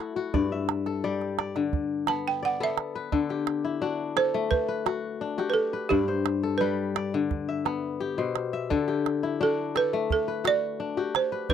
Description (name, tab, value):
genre	west african traditional, West African string and xylophone music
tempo	86 BPM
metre	4/4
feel	straight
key	D mixolydian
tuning	A4 = 440 Hz
part	balafon	melody	0.0-11.5 s	G4 to A5	-26 LUFS	right 6 dB	none
part	kora	arpeggios	0.0-11.5 s	G2 to E5	-27 LUFS	left 6 dB	none
part	calabash	percussion	0.3-11.5 s	none	-29 LUFS	right 7 dB	none
room	light reverb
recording	dry, close 1970s-style studio recording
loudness	-25 LUFS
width	side -8 dB against mid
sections	0.0-3.1 A section; 3.1-11.5 B section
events	balafon solo 0.0-3.1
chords	0.3 G; 3.1 D; 5.9 G; 8.7 D